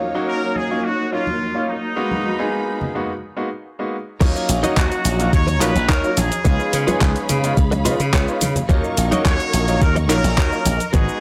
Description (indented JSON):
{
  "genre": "nu-disco, nu disco",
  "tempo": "107 BPM",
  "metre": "4/4",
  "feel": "straight",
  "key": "Eb minor",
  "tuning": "A4 = 438 Hz",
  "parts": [
    { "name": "bright grand piano", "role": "accompaniment", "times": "0.0-11.2 s", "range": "Gb3 to Ab4", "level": "-26 LUFS", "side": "equal", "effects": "vintage 12-bit sampler grit, sidechain pumping" },
    { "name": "warm symphonic string section", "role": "sustained chords", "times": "0.0-11.2 s", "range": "Gb3 to Db6", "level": "-30 LUFS", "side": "equal", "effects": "sidechain pumping" },
    { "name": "muted trumpet section", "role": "melody", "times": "0.3-11.2 s", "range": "Eb4 to Db5", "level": "-27 LUFS", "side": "equal", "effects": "analog delay" },
    { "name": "congas", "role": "percussion", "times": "0.6-10.8 s", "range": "none", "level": "-31 LUFS", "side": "equal", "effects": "none" },
    { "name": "direct-recorded clean electric guitar", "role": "riff", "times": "4.2-11.1 s", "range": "Eb4 to Eb5", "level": "-26 LUFS", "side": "equal", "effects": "ensemble chorus" },
    { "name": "glassy slap bass", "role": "bass", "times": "4.2-11.1 s", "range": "Ab1 to Db3", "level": "-23 LUFS", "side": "equal", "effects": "none" },
    { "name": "electronic kick drum", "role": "drums", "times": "4.2-11.1 s", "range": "none", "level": "-19 LUFS", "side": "equal", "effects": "none" },
    { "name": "pop drum kit", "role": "drums", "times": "4.2-11.2 s", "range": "cabasa, crash cymbal, handclaps, hi-hat", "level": "-27 LUFS", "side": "equal", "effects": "none" }
  ],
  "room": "small room reverb",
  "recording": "dry, gritty hardware recording, transformer saturation",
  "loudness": "-19 LUFS",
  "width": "mono",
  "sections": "0.0-4.2 A section; 4.2-11.2 B section",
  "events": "break 3.1-4.2; drop 4.2-11.2",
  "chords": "0.0 Ebm7; 2.0 Abm7; 4.2 Ebm7; 6.5 Db7; 8.7 Ebm7"
}